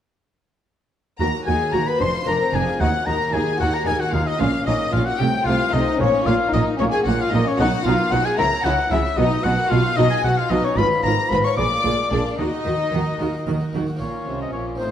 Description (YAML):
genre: classical, baroque-style concerto movement with solo episodes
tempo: 75 BPM (dotted quarters)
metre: 6/8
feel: straight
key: Eb minor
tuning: A4 = 439 Hz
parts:
  - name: clear oboe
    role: melody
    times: 1.2-14.9 s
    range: C5 to D6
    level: -24 LUFS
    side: left 2 dB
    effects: none
  - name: rich chamber violin section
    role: melody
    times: 1.2-14.9 s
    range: Db5 to D6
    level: -27 LUFS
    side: left 5 dB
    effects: none
  - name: rich chamber violin section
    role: second line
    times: 1.2-14.9 s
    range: Db4 to D5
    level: -25 LUFS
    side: left 3 dB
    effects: none
  - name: harpsichord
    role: accompaniment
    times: 1.2-14.9 s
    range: Eb2 to Bb4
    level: -30 LUFS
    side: equal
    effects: none
  - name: warm chamber viola section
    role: accompaniment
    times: 1.2-14.9 s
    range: A3 to Ab4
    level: -27 LUFS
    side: right 1 dB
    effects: none
  - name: rich chamber cello section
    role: bass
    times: 1.2-14.9 s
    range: Eb2 to Eb3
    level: -25 LUFS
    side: right 3 dB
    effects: none
  - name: warm chamber double bass section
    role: bass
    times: 1.2-14.9 s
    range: F1 to Eb2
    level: -26 LUFS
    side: right 3 dB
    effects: none
room: wet recital hall reverb, RT60 1.4 s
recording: dark, warm production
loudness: -18 LUFS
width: side -10 dB against mid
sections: 1.2-14.0 A section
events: none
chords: 1.2 Ebm; 2.0 Bb9/F; 2.8 Ebm; 4.4 Bbm; 5.2 Adim/C; 6.0 Bbm; 7.6 B; 8.4 Gb7/Db; 9.2 B; 10.8 Fdim/Ab; 11.6 Bb7; 12.4 Ebm; 14.0 Bbm